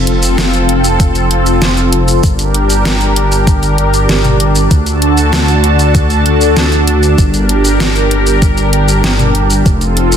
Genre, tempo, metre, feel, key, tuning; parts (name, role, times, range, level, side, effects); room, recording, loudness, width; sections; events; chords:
synthwave; 97 BPM; 4/4; straight; G minor; A4 = 440 Hz
lush unison pad; sustained chords; 0.0-10.2 s; D3 to A5; -13 LUFS; equal; chorus, phaser, vintage 12-bit sampler grit, sidechain pumping
dark detuned saw bass; bass; 0.0-10.2 s; F1 to D2; -12 LUFS; equal
pop drum kit; drums; 0.1-10.2 s; hi-hat, shaker, snare drum, toms; -16 LUFS; equal; overdrive
electronic kick drum; drums; 1.0-9.8 s; -11 LUFS; equal; overdrive
light reverb, digital ambience; dense, heavily limited modern master; -8 LUFS; side -8 dB against mid
0.0-10.2 A section
0.0 F; 2.2 Gm; 4.7 D; 7.2 Gm; 9.7 F